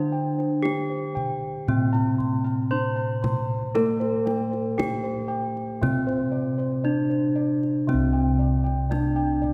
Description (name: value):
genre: Javanese gamelan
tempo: 58 BPM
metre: 4/4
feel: straight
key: unclear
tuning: A4 = 437 Hz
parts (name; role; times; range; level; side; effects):
- gamelan-type bronze metallophone; melody; 0.0-9.5 s; C4 to C5; -29 LUFS; equal; none
- gamelan-type bronze metallophone; accompaniment; 0.0-9.5 s; C3 to Bb3-45c; -31 LUFS; equal; none
- gamelan-type bossed gongs; arpeggios; 0.0-9.5 s; C5 to C6; -34 LUFS; equal; none
- gamelan-type bossed gongs; bass; 0.0-9.5 s; C2 to Bb4-45c; -30 LUFS; equal; none
- kendang; percussion; 0.4-9.5 s; none; -35 LUFS; equal; none
room: wet church reverb, RT60 3.0 s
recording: recorded in a church or concert hall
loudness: -25 LUFS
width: mono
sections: 0.0-9.5 A section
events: none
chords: none